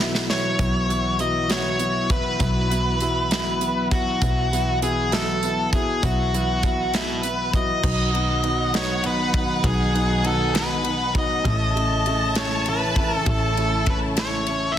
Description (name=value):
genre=six-eight pop ballad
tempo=66 BPM (dotted quarters)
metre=6/8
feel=straight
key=unclear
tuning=A4 = 440 Hz
part: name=clear baby grand piano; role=accompaniment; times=0.0-14.7 s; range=F#3 to E4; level=-28 LUFS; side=right 2 dB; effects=none
part: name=warm studio string section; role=sustained chords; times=0.0-14.8 s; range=A2 to G#5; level=-29 LUFS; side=left 1 dB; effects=none
part: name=bright double bass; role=bass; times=0.0-14.8 s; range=A1 to B1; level=-26 LUFS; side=equal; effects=none
part: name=modern studio drum kit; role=drums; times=0.0-14.6 s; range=crash cymbal, hi-hat, kick drum, ride cymbal, snare drum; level=-26 LUFS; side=equal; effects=none
part: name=octave-fuzz lead guitar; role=melody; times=0.3-14.8 s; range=F#4 to E5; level=-24 LUFS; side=left 1 dB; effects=distortion
part: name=dark studio violin section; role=second line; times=7.8-14.7 s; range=F#5 to A5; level=-30 LUFS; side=left 1 dB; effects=tape echo
room=light reverb, studio reverb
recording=dense, heavily limited modern master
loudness=-19 LUFS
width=side -10 dB against mid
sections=0.0-7.8 A section; 7.8-14.8 B section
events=drum fill 0.0-0.6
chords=0.0 Bsus4; 7.8 B; 11.5 A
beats=| 0.60 1.50 | 2.41 3.31 | 4.21 5.12 | 6.02 6.93 | 7.83 8.74 | 9.64 10.55 | 11.45 12.36 | 13.26 14.17